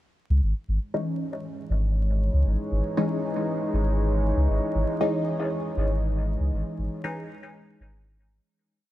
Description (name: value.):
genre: dub techno.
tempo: 118 BPM.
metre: 4/4.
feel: straight.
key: C# minor.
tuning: A4 = 439 Hz.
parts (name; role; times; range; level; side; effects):
deep dark ambient pad; sustained chords; 1.4-8.4 s; E3 to C#5; -30 LUFS; equal; chorus, built-in reverb.
warm sub bass; bass; 0.3-8.4 s; G#1 to C#2; -23 LUFS; equal; none.
filtered dub chord stab; stabs; 0.9-7.2 s; E3 to D#4; -30 LUFS; left 1 dB; phaser, dub echo.
room: light reverb.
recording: vinyl crackle.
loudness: -24 LUFS.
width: side -14 dB against mid.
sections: 0.3-8.4 groove.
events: fade-out 5.7-8.4.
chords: 0.3 C#madd9.